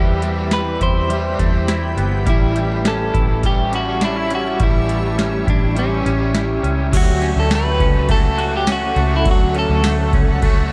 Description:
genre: dream pop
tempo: 103 BPM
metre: 4/4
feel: straight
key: D major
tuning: A4 = 440 Hz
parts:
  - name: electric guitar at the edge of break-up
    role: melody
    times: 0.0-10.1 s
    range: C#4 to C5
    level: -25 LUFS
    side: equal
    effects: tremolo, tape echo, shimmer reverb
  - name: raw garage guitar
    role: accompaniment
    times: 0.0-10.7 s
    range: A2 to B4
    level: -29 LUFS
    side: equal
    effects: overdrive, harmonic tremolo, lush chorus, shimmer reverb
  - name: granular cloud pad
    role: sustained chords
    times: 0.0-10.7 s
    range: G4 to E6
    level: -29 LUFS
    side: equal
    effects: built-in reverb, shimmer reverb
  - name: semi-hollow electric guitar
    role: arpeggios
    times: 0.0-10.7 s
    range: F#3 to F#4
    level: -27 LUFS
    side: equal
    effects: ensemble chorus, tape echo, shimmer reverb
  - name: vintage muted fingered electric bass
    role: bass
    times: 0.0-10.7 s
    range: G1 to E2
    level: -23 LUFS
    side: equal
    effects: none
  - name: booming analog drum machine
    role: drums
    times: 0.2-10.6 s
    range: crash cymbal, hi-hat, kick drum, ride cymbal, snare drum, tambourine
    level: -20 LUFS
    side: equal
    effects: none
room: light reverb, digital ambience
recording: none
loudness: -17 LUFS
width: mono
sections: 0.0-6.9 A section; 6.9-10.7 B section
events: none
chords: 0.0 Cmaj7/E; 2.3 A7; 6.9 Dmaj7

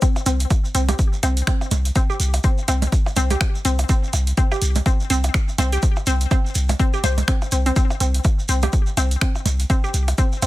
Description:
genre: minimal techno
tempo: 124 BPM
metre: 4/4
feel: swing 58% on 16ths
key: unclear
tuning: A4 = 440 Hz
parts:
  - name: resonant blip pluck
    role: riff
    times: 0.0-10.5 s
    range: C4 to C5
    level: -25 LUFS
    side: left 1 dB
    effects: chorus, sidechain pumping, ping-pong delay
  - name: electronic kick drum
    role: drums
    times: 0.0-10.3 s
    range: none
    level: -18 LUFS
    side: equal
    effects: overdrive
  - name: punchy analog drum machine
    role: drums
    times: 0.0-10.5 s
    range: finger snaps, hi-hat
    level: -26 LUFS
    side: right 1 dB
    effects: overdrive
  - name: shekere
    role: percussion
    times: 0.0-10.5 s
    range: none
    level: -31 LUFS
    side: right 2 dB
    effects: none
  - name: percussion blips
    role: percussion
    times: 0.2-10.5 s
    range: none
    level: -28 LUFS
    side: right 4 dB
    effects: overdrive, dub echo
  - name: punchy sub bass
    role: bass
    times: 0.3-10.5 s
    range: C2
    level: -19 LUFS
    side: equal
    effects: tube saturation, sidechain pumping
room: little or no reverb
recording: none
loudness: -17 LUFS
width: side -17 dB against mid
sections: 0.0-10.5 A section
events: drop 0.0-10.5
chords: 0.0 C5

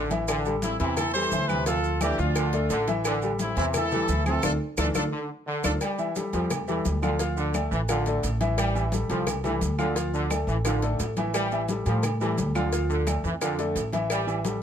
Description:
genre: latin, salsa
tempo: 174 BPM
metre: 4/4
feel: straight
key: A minor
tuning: A4 = 443 Hz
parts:
  - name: clear horn section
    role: melody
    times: 0.0-5.7 s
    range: C4 to C5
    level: -28 LUFS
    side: equal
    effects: none
  - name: brilliant trombone section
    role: second line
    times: 0.0-14.4 s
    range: C3 to G3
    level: -30 LUFS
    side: equal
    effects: none
  - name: clear concert grand piano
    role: accompaniment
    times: 0.0-14.6 s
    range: E3 to F5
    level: -30 LUFS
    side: left 1 dB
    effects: none
  - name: upright bass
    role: bass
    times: 0.0-14.6 s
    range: A1 to A2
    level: -28 LUFS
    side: equal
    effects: none
  - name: agogo bells and timbales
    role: percussion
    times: 0.1-14.4 s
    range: none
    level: -36 LUFS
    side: right 10 dB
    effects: none
  - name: congas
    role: percussion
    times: 0.1-14.6 s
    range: none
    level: -35 LUFS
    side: left 3 dB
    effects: none
  - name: cowbell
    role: percussion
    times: 0.1-14.6 s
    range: none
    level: -36 LUFS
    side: left 5 dB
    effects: none
  - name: maracas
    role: percussion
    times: 0.1-14.6 s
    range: none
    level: -40 LUFS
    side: right 9 dB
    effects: none
  - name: claves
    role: percussion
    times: 0.3-14.3 s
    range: none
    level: -38 LUFS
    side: right 1 dB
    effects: none
room: light reverb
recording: close, detailed microphones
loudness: -24 LUFS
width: side -8 dB against mid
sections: 0.0-5.8 A section; 5.8-14.6 B section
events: drum fill 4.4-5.8, 10.7-11.3; band accent 4.4-5.8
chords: 0.3 Am7; 1.7 Dm; 3.0 Am7; 4.4 Dm; 5.8 A5; 7.2 Dm; 8.6 Am7; 10.0 Dm; 11.3 A5; 12.7 Dm; 14.1 A5

